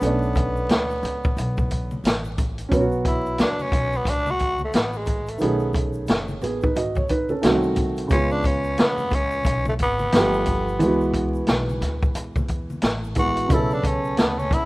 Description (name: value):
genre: hip hop, jazz-hop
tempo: 89 BPM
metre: 4/4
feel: swing 61% on 16ths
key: B dorian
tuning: A4 = 438 Hz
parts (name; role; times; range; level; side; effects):
- growling tenor saxophone; melody; 0.0-14.7 s; G#3 to F#4; -25 LUFS; equal; none
- dark grand piano; accompaniment; 0.0-14.7 s; C#3 to D#5; -24 LUFS; right 2 dB; none
- upright bass; bass; 0.0-14.7 s; F#1 to E#2; -28 LUFS; equal; none
- open jazz drum kit; drums; 0.0-14.7 s; hi-hat, kick drum, snare drum; -23 LUFS; equal; vintage 12-bit sampler grit
- tube shaker and congas; percussion; 0.0-14.7 s; none; -36 LUFS; left 1 dB; none
room: little or no reverb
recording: rough home demo mix, vinyl crackle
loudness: -20 LUFS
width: side -20 dB against mid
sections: 0.0-2.7 A section; 2.7-14.7 B section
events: tenor saxophone solo 2.7-14.7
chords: 0.0 Bm9; 2.7 B7sus2; 5.4 B13; 7.4 Cdim7; 8.1 C#7; 10.1 G9; 10.8 F#9sus4; 13.5 Bm9